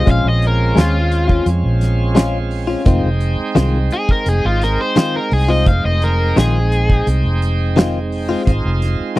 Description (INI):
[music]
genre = straight-eighth soul blues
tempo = 86 BPM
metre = 4/4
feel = straight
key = F minor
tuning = A4 = 438 Hz
[part]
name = cranked stack guitar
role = melody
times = 0.0-7.1 s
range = F4 to F5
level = -19 LUFS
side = left 2 dB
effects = overdrive
[part]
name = bright tonewheel organ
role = accompaniment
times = 0.0-9.2 s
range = Ab3 to G5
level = -23 LUFS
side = right 4 dB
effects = overdrive, slow rotary speaker
[part]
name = direct-recorded clean electric guitar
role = stabs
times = 0.0-9.2 s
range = Eb3 to F4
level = -18 LUFS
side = left 4 dB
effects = phaser
[part]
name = vintage muted fingered electric bass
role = bass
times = 0.0-9.0 s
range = F1 to F2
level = -16 LUFS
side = equal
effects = none
[part]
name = damped 70s drum kit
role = drums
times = 0.1-9.2 s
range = hi-hat, kick drum, snare drum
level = -14 LUFS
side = equal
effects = none
[sound]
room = little or no reverb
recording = dry, close 1970s-style studio recording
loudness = -13 LUFS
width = side -18 dB against mid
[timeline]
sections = 0.0-9.2 A section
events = none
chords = 0.1 Bbm7; 2.9 Fm7